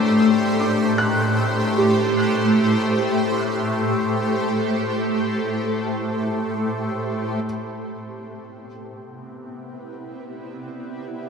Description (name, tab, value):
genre	ambient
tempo	free time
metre	none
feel	none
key	C lydian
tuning	A4 = 439 Hz
part	shimmering ambient pad	sustained chords	0.0-11.3 s	A2 to D5	-21 LUFS	left 1 dB	chorus, built-in reverb, phaser
part	felt-muted upright piano	arpeggios	0.0-7.5 s	D4 to F#6	-26 LUFS	right 2 dB	diffuse ambient delay
part	wind-like tuned noise texture	texture	0.0-7.5 s	none	barely audible	none	none
room	wet cathedral reverb, RT60 5.2 s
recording	none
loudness	-18 LUFS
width	side -6 dB against mid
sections	0.0-7.4 A section; 7.4-11.3 B section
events	fade-in on ambient pad 7.4-11.3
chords	0.0 Am7; 7.4 Cmaj9